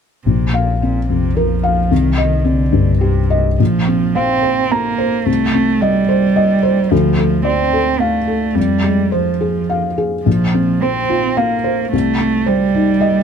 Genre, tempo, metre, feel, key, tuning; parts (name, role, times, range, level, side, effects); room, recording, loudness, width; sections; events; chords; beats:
neoclassical piano and strings; 109 BPM; 3/4; rubato; Bb major; A4 = 440 Hz
dark cello; second line; 0.2-13.2 s; Bb2 to C4; -16 LUFS; right 5 dB
felt-muted upright piano; accompaniment; 0.3-13.2 s; Bb1 to Bb5; -16 LUFS; left 3 dB
warm sub bass; bass; 0.3-3.6 s; Bb1 to C2; -18 LUFS; left 1 dB
little or no reverb; close, detailed microphones; -13 LUFS; side -7 dB against mid
0.3-3.6 A section; 3.6-13.2 B section
0.3 Bbsus2; 1.9 Cm; 3.6 Bbsus2; 5.3 Cm; 6.9 Dm; 8.6 Fm; 10.3 Bbsus2; 11.9 Cm
| 0.26 0.82 1.37 | 1.91 2.45 3.02 | 3.60 4.16 4.71 | 5.27 5.82 6.37 | 6.91 7.46 8.00 | 8.56 9.12 9.70 | 10.26 10.82 11.38 | 11.93 12.47 13.02